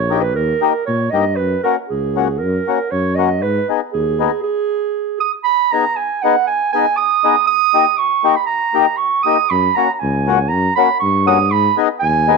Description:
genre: alpine folk, alpine dance band.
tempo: 118 BPM.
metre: 2/4.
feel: straight.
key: G# minor.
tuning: A4 = 439 Hz.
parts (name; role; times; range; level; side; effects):
dark clarinet; melody; 0.0-12.4 s; G#4 to D#6; -16 LUFS; right 9 dB; none.
mellow tuba; bass; 0.0-4.3, 9.5-12.4 s; A#1 to A#2; -19 LUFS; left 2 dB; none.
mellow accordion; accompaniment; 0.1-12.4 s; A#3 to G#4; -18 LUFS; left 14 dB; none.
room: light reverb, small room reverb.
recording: 1960s-style stereo with parts hard left and right.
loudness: -14 LUFS.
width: side -3 dB against mid.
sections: 0.0-5.5 A section; 5.5-12.4 A section.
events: none.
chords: 0.0 D#; 1.4 F#; 3.4 G#m; 7.5 D#; 9.5 F#; 11.5 G#m.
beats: | 0.36 0.87 | 1.39 1.91 | 2.42 2.93 | 3.43 3.94 | 4.45 4.96 | 5.47 5.99 | 6.49 6.99 | 7.49 7.99 | 8.49 9.00 | 9.51 10.02 | 10.52 11.02 | 11.52 12.02.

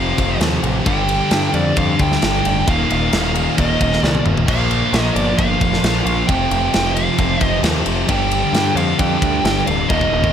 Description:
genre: hard rock.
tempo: 133 BPM.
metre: 4/4.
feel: straight.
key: unclear.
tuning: A4 = 442 Hz.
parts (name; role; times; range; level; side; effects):
dark smooth lead guitar; melody; 0.0-10.3 s; D5 to G5; -21 LUFS; right 2 dB; overdrive, slapback echo.
overdriven tonewheel organ; sustained chords; 0.0-10.3 s; F3 to F5; -31 LUFS; equal; slow rotary speaker, chorus vibrato.
distorted electric guitar; riff; 0.0-10.3 s; Eb2 to Bb3; -24 LUFS; left 11 dB; overdrive.
scooped high-gain guitar; riff; 0.0-10.3 s; Eb2 to Bb3; -24 LUFS; right 8 dB; distortion.
sludgy distorted guitar; riff; 0.0-10.3 s; Eb2 to Bb3; -23 LUFS; equal; overdrive.
growling picked electric bass; bass; 0.0-10.3 s; D1 to G2; -21 LUFS; equal; overdrive.
tight metal drum kit; drums; 0.2-10.3 s; crash cymbal, kick drum, ride cymbal, snare drum, toms; -20 LUFS; equal; none.
room: studio reverb.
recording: none.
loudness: -14 LUFS.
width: side -8 dB against mid.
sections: 0.0-10.3 A section.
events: drum fill 4.0-4.5, 9.9-10.3.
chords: 0.0 F; 0.9 G5; 2.7 Eb5; 4.5 Bb5; 6.3 F5; 8.1 G5.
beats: 0.41 | 0.86 1.32 1.77 2.22 | 2.67 3.13 3.58 4.03 | 4.48 4.93 5.39 5.84 | 6.29 6.74 7.19 7.64 | 8.09 8.54 8.99 9.45 | 9.89.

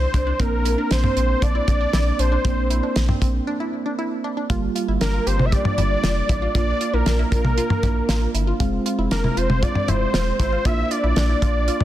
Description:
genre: synth-pop.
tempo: 117 BPM.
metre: 4/4.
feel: straight.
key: unclear.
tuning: A4 = 439 Hz.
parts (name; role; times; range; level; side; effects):
wide unison lead; melody; 0.0-11.8 s; Bb4 to E5; -24 LUFS; equal; tape echo.
soft electric-piano-like synth keys; accompaniment; 0.0-11.8 s; E3 to F4; -27 LUFS; right 4 dB; chorus.
wide unison pluck; arpeggios; 0.0-11.8 s; C4 to G4; -30 LUFS; equal; tape echo.
round analog bass; bass; 0.0-11.7 s; E1 to C2; -22 LUFS; equal; none.
damped 70s drum kit; drums; 0.1-11.8 s; hi-hat, kick drum, snare drum, toms; -23 LUFS; equal; none.
room: light reverb, small room ambience.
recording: dense, heavily limited modern master.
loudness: -18 LUFS.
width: side -13 dB against mid.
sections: 0.0-4.5 A section; 4.5-11.8 B section.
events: break 3.5-4.5.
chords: 0.4 Bbadd9; 4.5 Gm7; 6.5 Bb; 8.6 Fm; 10.7 Bb.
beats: | 0.40 0.91 1.42 1.93 | 2.45 2.96 3.47 3.99 | 4.50 5.01 5.52 6.04 | 6.55 7.06 7.58 8.09 | 8.60 9.11 9.63 10.14 | 10.65 11.16 11.68.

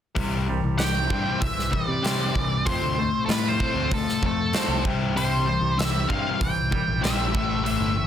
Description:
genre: quiet-loud alternative rock.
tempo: 96 BPM.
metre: 4/4.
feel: straight.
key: C major.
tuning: A4 = 440 Hz.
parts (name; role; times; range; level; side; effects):
overdriven electric guitar; riff; 0.1-8.1 s; A2 to C4; -28 LUFS; left 6 dB; none.
twangy electric guitar; arpeggios; 0.2-8.1 s; F2 to G4; -34 LUFS; right 4 dB; tremolo, digital delay.
picked electric bass; bass; 0.2-8.1 s; G1 to C3; -28 LUFS; right 1 dB; none.
huge arena drum kit; drums; 0.2-7.8 s; hi-hat, kick drum, snare drum; -27 LUFS; equal; none.
octave-fuzz lead guitar; melody; 0.8-8.1 s; A4 to G5; -27 LUFS; equal; distortion.
room: light reverb.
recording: dense, heavily limited modern master.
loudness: -21 LUFS.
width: side -9 dB against mid.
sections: 0.2-8.1 A section.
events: none.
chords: 0.2 C; 2.7 F; 4.9 C; 7.3 Am.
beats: | 0.17 0.79 1.42 2.04 | 2.67 3.29 3.92 4.54 | 5.17 5.79 6.41 7.04 | 7.66.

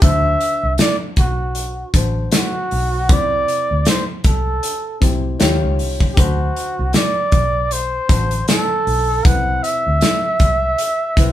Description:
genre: lush 1970s-style soul.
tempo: 78 BPM.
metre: 4/4.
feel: swing 58% on 16ths.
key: unclear.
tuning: A4 = 438 Hz.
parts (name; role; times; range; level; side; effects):
breathy flugelhorn; melody; 0.0-11.3 s; F#4 to F#5; -19 LUFS; right 1 dB; none.
dark baby grand piano; accompaniment; 0.0-11.3 s; C3 to C5; -27 LUFS; left 4 dB; none.
vintage muted fingered electric bass; bass; 0.0-11.3 s; A1 to Eb2; -20 LUFS; equal; none.
modern studio drum kit; drums; 0.0-11.3 s; hi-hat, kick drum, snare drum; -16 LUFS; equal; none.
tambourine; percussion; 0.8-10.2 s; none; -32 LUFS; right 6 dB; none.
room: light reverb.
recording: band playing live in one room.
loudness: -15 LUFS.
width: side -12 dB against mid.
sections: 0.0-11.3 A section.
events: none.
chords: 0.0 D7; 3.1 C; 5.4 Eb9; 6.2 D7; 9.2 Cmaj7.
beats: | 0.02 0.79 1.56 2.33 | 3.10 3.87 4.63 5.40 | 6.17 6.94 7.71 8.48 | 9.24 10.01 10.78.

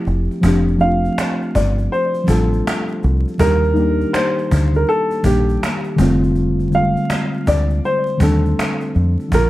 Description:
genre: lo-fi hip hop.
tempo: 81 BPM.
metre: 4/4.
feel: swing 64% on 16ths.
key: F mixolydian.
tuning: A4 = 440 Hz.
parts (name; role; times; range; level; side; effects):
muted felt-like synth keys; accompaniment; 0.0-9.5 s; D3 to G4; -19 LUFS; left 1 dB; chorus, cassette tape, low-pass filter.
deep dub fingered electric bass; bass; 0.1-9.5 s; F1 to F2; -17 LUFS; equal; none.
cajon; drums; 0.1-9.5 s; none; -24 LUFS; equal; none.
dark upright piano; melody; 0.8-9.5 s; G4 to F5; -20 LUFS; equal; low-pass filter, analog delay.
room: light reverb.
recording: vinyl crackle.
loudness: -14 LUFS.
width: side -16 dB against mid.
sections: 0.4-9.5 A section.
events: none.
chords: 0.4 F69; 3.4 Ebmaj7; 6.0 F69.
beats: | 0.43 1.17 1.91 2.65 | 3.40 4.14 4.88 5.62 | 6.36 7.10 7.84 8.58 | 9.32.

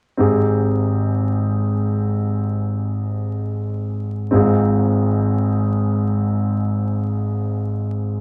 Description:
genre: pop.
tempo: free time.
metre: none.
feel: none.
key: Ab major.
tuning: A4 = 440 Hz.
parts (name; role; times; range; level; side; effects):
warm grand piano; accompaniment; 0.2-8.2 s; Ab1 to Ab4; -20 LUFS; equal; none.
room: wet studio reverb, RT60 0.9 s.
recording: vinyl crackle.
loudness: -20 LUFS.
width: mono.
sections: 0.2-8.2 A section.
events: none.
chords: 0.2 Abmaj7; 4.3 Fm7/Ab.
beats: free time.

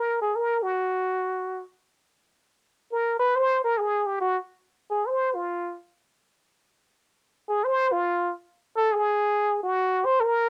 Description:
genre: jazz.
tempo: free time.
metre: none.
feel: none.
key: unclear.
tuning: A4 = 440 Hz.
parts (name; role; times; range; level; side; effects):
trumpet with plunger mute; solo; 0.0-10.5 s; F4 to C5; -25 LUFS; equal; cassette tape.
room: moderate studio reverb, RT60 0.5 s.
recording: home recording on cassette.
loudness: -26 LUFS.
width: mono.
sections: 0.0-4.6 A section; 4.6-10.5 B section.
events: muted trumpet solo 4.6-10.5.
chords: none.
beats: free time.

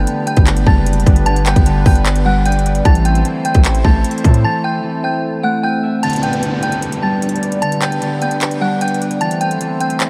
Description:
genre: hip hop, trap.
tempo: 151 BPM.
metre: 4/4.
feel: half-time.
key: unclear.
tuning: A4 = 440 Hz.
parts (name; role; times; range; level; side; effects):
delicate synth tine bell; melody; 0.0-10.0 s; F#5 to A6; -23 LUFS; equal; chorus, low-pass filter, tape echo.
Celtic harp; accompaniment; 0.0-10.1 s; D3 to E5; -23 LUFS; equal; low-pass filter.
warm analog pad; sustained chords; 0.0-10.1 s; G3 to C5; -25 LUFS; equal; chorus.
distorted 808-style bass; bass; 0.0-4.4 s; F#1 to A2; -17 LUFS; equal; distortion.
trap drum kit; drums; 0.1-10.1 s; handclaps, hi-hat, kick drum; -18 LUFS; equal; none.
downlifter; sound effects; 6.0-9.2 s; none; -30 LUFS; equal; none.
room: moderate huge ambient reverb, RT60 4.5 s.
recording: dreamy mix soaked in reverb, vinyl crackle.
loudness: -15 LUFS.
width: mono.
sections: 0.0-6.0 A section; 6.0-10.1 B section.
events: break 4.4-6.0.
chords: 0.0 G; 2.9 Am; 6.0 G; 9.2 Am.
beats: 0.07 0.47 0.86 | 1.26 1.66 2.06 2.45 | 2.85 3.25 3.65 4.04 | 4.44 4.84 5.24 5.63 | 6.03 6.43 6.83 7.22 | 7.62 8.02 8.41 8.81 | 9.21 9.61 10.00.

